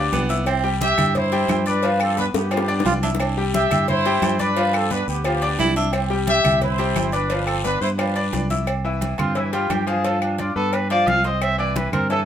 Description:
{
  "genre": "latin, salsa",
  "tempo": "176 BPM",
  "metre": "4/4",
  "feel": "straight",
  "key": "C major",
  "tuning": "A4 = 441 Hz",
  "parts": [
    { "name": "mellow trumpet section", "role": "melody", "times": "0.0-8.5 s", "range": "B3 to E5", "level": "-22 LUFS", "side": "equal", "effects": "none" },
    { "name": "bright grand piano", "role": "accompaniment", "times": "0.0-12.2 s", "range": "E3 to E6", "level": "-24 LUFS", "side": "left 3 dB", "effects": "none" },
    { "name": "fingered electric bass", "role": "bass", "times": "0.0-12.3 s", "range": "G1 to G2", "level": "-24 LUFS", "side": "right 1 dB", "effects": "none" },
    { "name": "warm baritone saxophone", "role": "second line", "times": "0.1-0.7, 2.9-3.4, 5.6-6.2 s", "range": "B3 to F4", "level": "-24 LUFS", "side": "right 5 dB", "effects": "none" },
    { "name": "congas", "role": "percussion", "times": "0.1-12.3 s", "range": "none", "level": "-28 LUFS", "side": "left 2 dB", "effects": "none" },
    { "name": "cowbell and bongos", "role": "percussion", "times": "0.1-12.3 s", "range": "none", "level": "-29 LUFS", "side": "left 3 dB", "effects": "none" },
    { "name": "guiro", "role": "percussion", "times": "0.1-8.7 s", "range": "none", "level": "-36 LUFS", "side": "left 6 dB", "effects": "none" },
    { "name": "timbales and agogo bells", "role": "percussion", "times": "0.1-12.1 s", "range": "none", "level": "-30 LUFS", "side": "right 4 dB", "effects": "none" },
    { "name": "claves", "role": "percussion", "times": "0.5-12.1 s", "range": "none", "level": "-34 LUFS", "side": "left 6 dB", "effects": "none" },
    { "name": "warm trumpet", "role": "melody", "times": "9.2-12.2 s", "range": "D4 to F5", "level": "-23 LUFS", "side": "right 2 dB", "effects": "none" }
  ],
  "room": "light reverb",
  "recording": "band playing live in one room",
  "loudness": "-18 LUFS",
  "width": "side -9 dB against mid",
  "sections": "0.0-8.7 A section; 8.7-12.3 B section",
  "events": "drum fill 2.3-3.2; trumpet solo 8.7-12.3",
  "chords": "0.5 Cadd9; 1.8 G7; 3.2 Cadd9; 4.6 G7; 5.9 Cadd9; 7.3 G7; 8.7 C; 10.0 G7; 11.4 C"
}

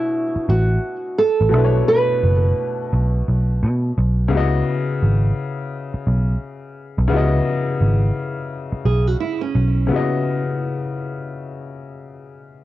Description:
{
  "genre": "lo-fi hip hop",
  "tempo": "86 BPM",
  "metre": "4/4",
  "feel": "swing 63% on 16ths",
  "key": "C# minor",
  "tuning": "A4 = 438 Hz",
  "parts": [
    { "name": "nylon-string guitar", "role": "melody", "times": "0.0-3.9 s", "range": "E4 to B4", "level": "-19 LUFS", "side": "right 3 dB", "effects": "low-pass filter, cassette tape" },
    { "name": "warm upright piano", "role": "accompaniment", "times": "0.0-12.6 s", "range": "B2 to D#5", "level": "-24 LUFS", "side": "left 4 dB", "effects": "cassette tape, low-pass filter" },
    { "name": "vintage muted picked electric bass", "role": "bass", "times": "0.4-9.9 s", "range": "F#1 to B2", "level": "-17 LUFS", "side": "equal", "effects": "none" },
    { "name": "nylon-string guitar", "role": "second line", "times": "8.9-10.4 s", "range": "C#4 to G#4", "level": "-24 LUFS", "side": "right 7 dB", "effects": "low-pass filter, cassette tape, tape echo" }
  ],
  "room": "moderate booth ambience, RT60 0.2 s",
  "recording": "home recording on cassette",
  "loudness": "-17 LUFS",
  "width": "side -15 dB against mid",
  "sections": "0.0-12.6 A section",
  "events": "break 9.9-12.6",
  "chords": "0.0 Bm11; 4.3 C#m11"
}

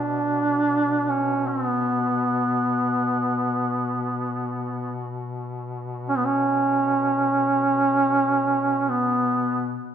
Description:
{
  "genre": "caucasian folk, Caucasian lament",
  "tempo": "free time",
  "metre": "none",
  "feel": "none",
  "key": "B minor",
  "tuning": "A4 = 440 Hz",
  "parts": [
    { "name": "warm duduk", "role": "melody", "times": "0.0-9.8 s", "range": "B3 to D4", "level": "-21 LUFS", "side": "right 2 dB", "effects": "none" },
    { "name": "warm duduk", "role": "drone", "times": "0.0-9.8 s", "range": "B2", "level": "-31 LUFS", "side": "left 3 dB", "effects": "none" }
  ],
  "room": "moderate scoring stage reverb, RT60 1.9 s",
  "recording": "minimal, uncompressed stereo recording",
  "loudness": "-20 LUFS",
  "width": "side -9 dB against mid",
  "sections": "0.0-9.9 A section",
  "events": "none",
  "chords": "none"
}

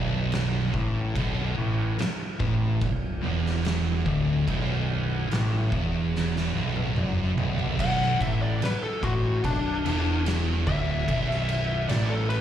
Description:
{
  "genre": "stoner and doom metal",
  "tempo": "72 BPM",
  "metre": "4/4",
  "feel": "straight",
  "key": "B minor",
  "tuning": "A4 = 440 Hz",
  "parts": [
    { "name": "sludgy distorted guitar", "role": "riff", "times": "0.0-12.4 s", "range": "B1 to A2", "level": "-34 LUFS", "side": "right 1 dB", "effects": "overdrive, slapback echo" },
    { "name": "thick fuzz guitar", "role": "riff", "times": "0.0-12.4 s", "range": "B1 to A2", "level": "-30 LUFS", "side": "left 6 dB", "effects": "distortion, slapback echo" },
    { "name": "thick fuzz guitar", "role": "riff", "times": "0.0-12.4 s", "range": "B1 to A2", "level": "-30 LUFS", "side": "right 7 dB", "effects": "distortion, slapback echo" },
    { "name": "growling picked electric bass", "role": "bass", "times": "0.0-12.4 s", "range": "B0 to A1", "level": "-29 LUFS", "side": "right 1 dB", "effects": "overdrive" },
    { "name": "oversized low-tuned drum kit", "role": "drums", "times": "0.3-12.4 s", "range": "crash cymbal, kick drum, snare drum, toms", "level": "-31 LUFS", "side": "equal", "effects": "none" },
    { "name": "fuzz lead guitar", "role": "melody", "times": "7.8-12.4 s", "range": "D4 to F#5", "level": "-29 LUFS", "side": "left 3 dB", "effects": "distortion, slapback echo" }
  ],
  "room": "studio reverb",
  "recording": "live gig heard through the venue's PA, club reverb",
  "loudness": "-23 LUFS",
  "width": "side -10 dB against mid",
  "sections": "0.0-7.8 A section; 7.8-12.4 B section",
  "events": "drum fill 6.1-7.8; lead electric guitar solo 7.8-12.4",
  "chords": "0.0 Bm"
}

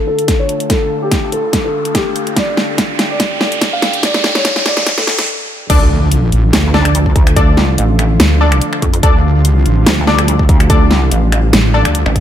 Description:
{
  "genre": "heavy wobble dubstep",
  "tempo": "144 BPM",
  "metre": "4/4",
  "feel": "swing 54% on 16ths, half-time",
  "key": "D minor",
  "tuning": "A4 = 441 Hz",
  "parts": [
    { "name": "felt-muted upright piano", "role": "melody", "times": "0.0-5.2 s", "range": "G4 to F5", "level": "-19 LUFS", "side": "left 1 dB", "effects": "low-pass filter, ping-pong delay" },
    { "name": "lush unison pad", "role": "sustained chords", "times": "0.0-12.2 s", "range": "D3 to A4", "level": "-21 LUFS", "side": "equal", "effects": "chorus, sidechain pumping" },
    { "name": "riser and impact", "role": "sound effects", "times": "1.2-7.4 s", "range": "none", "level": "-20 LUFS", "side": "right 1 dB", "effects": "none" },
    { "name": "dubstep drum kit", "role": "drums", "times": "0.2-12.2 s", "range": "crash cymbal, finger snaps, hi-hat, snare drum", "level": "-16 LUFS", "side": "equal", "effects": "none" },
    { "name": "electronic kick drum", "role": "drums", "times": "0.3-12.2 s", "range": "none", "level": "-13 LUFS", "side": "equal", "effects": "none" },
    { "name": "orchestra-hit-like synth stab", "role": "stabs", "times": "5.7-11.9 s", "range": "D4 to D5", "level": "-18 LUFS", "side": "left 3 dB", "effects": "built-in reverb, cassette tape, ping-pong delay" },
    { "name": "wobble bass", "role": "bass", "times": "5.7-12.0 s", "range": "A1 to D2", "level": "-12 LUFS", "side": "equal", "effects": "chorus, overdrive" },
    { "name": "pulsing pluck wobble bass", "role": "bass", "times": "6.5-12.2 s", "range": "A1 to F2", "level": "-13 LUFS", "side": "equal", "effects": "chorus, overdrive" }
  ],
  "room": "little or no reverb",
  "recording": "high-pass filter",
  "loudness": "-10 LUFS",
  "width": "side -10 dB against mid",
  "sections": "0.0-5.7 A section; 5.7-12.2 B section",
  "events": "build-up 0.0-5.7; drum fill 0.0-5.3; filter sweep on felt piano 0.0-5.7; filter sweep 0.0-5.7; riser 1.2-5.3; stop 5.3-5.7; drop 5.7-12.2; impact 5.7-7.4",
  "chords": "0.0 Dm"
}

